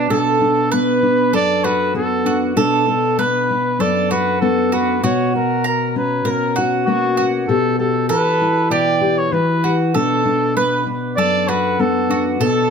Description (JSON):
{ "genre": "acoustic folk duo or small band", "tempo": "98 BPM", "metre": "4/4", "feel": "straight", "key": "B minor", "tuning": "A4 = 440 Hz", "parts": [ { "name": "mellow trumpet", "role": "melody", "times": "0.0-12.7 s", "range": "F#4 to D5", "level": "-19 LUFS", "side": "equal", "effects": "none" }, { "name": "fingerpicked steel-string acoustic guitar", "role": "accompaniment", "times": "0.0-12.7 s", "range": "F#2 to A4", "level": "-18 LUFS", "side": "left 2 dB", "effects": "none" }, { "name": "mandolin", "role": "arpeggios", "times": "0.0-12.7 s", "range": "F#4 to A#5", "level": "-21 LUFS", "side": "right 5 dB", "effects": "none" } ], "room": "light reverb", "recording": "close, detailed microphones", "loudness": "-15 LUFS", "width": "side -6 dB against mid", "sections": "0.1-12.7 A section", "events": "none", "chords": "0.1 Bm7; 5.0 F#/B; 7.5 Emadd9/B; 10.0 Bm7" }